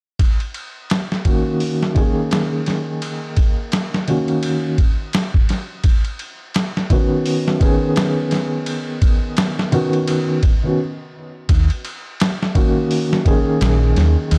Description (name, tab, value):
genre	trip hop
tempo	85 BPM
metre	4/4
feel	swing 59% on 16ths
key	Eb minor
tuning	A4 = 440 Hz
part	boom bap sampler-style drum kit	drums	0.2-14.4 s	hi-hat, kick drum, ride cymbal, snare drum	-21 LUFS	equal	none
part	felt-muted upright piano	accompaniment	1.2-14.4 s	Eb3 to Ab4	-22 LUFS	equal	tremolo, vintage 12-bit sampler grit, low-pass filter, tape echo
part	deep dub fingered electric bass	bass	11.5-14.4 s	Bb1 to Eb2	-16 LUFS	equal	none
room	light reverb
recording	dark, warm production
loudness	-18 LUFS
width	mono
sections	0.2-11.5 A section; 11.5-14.4 B section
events	stop 10.8-11.5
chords	0.2 Ebm7; 5.8 Badd9/D#; 11.5 Ebm7